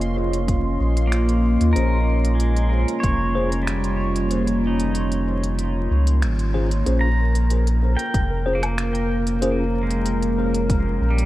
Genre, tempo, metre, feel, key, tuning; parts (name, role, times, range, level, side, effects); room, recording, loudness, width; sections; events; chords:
ambient dub; 94 BPM; 4/4; straight; Bb dorian; A4 = 439 Hz
deep dark ambient pad; sustained chords; 0.0-11.3 s; Bb3 to Eb5; -25 LUFS; equal; chorus, built-in reverb
warm sub bass; bass; 0.0-11.3 s; F1 to Eb2; -21 LUFS; equal; tube saturation
organic electronic drum kit; drums; 0.0-11.3 s; finger snaps, hi-hat, woodblock; -33 LUFS; equal
bubbling stepped-filter texture; texture; 0.0-11.3 s; Bb4 to C6; -33 LUFS; left 2 dB; chorus, built-in reverb
electronic kick drum; drums; 0.5-3.2, 8.1-10.8 s; -22 LUFS; equal; overdrive
pedal steel guitar; arpeggios; 1.1-11.3 s; G3 to Bb5; -27 LUFS; right 1 dB; dub echo
tine electric piano; stabs; 1.8-9.6 s; Db4 to C5; -30 LUFS; left 2 dB; phaser, dub echo
light reverb; vinyl crackle; -18 LUFS; side -16 dB against mid
0.0-6.9 A section; 6.9-11.3 B section
kick drops out 5.6-6.9; band accent 6.2-6.5
0.0 Bbm7